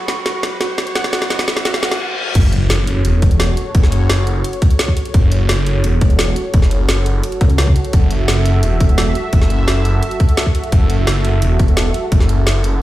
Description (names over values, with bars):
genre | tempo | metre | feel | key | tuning
dark technical drum and bass | 172 BPM | 4/4 | straight | F# minor | A4 = 440 Hz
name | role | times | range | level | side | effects
sweeping resonant pad | sustained chords | 0.0-12.8 s | F#4 to C#6 | -24 LUFS | right 1 dB | chorus, sidechain pumping
riser, reverse cymbal and impact | sound effects | 0.0-3.7 s | none | -24 LUFS | left 1 dB | none
warbly tape-like pad | texture | 0.0-2.0 s | F#4 to B5 | -37 LUFS | right 1 dB | none
warbly dusty pluck | arpeggios | 0.1-1.9 s | F#4 to F#5 | -24 LUFS | right 2 dB | chorus, sidechain pumping, digital delay
drum and bass drum kit | drums | 0.1-12.7 s | crash cymbal, hi-hat, snare drum | -20 LUFS | equal | none
phased detuned saw bass | bass | 2.4-12.8 s | E1 to F#1 | -15 LUFS | equal | phaser, tube saturation
electronic kick drum | drums | 2.4-12.2 s | none | -12 LUFS | equal | overdrive
pulsing pluck wobble bass | bass | 7.4-7.7 s | C#2 | -13 LUFS | equal | chorus, tube saturation
room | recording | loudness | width
light reverb | played on a big sound system in a bare room, large studio reverb | -12 LUFS | side -15 dB against mid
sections
0.0-2.4 A section; 2.4-12.8 B section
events
build-up 0.0-2.4; drum fill 0.0-2.0; riser 0.0-2.0; filter sweep on analog synth pad 0.0-2.4; reverse cymbal 1.7-2.4; stop 2.0-2.4; drop 2.4-12.8; impact 2.4-3.7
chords
0.0 F#5; 2.4 F#m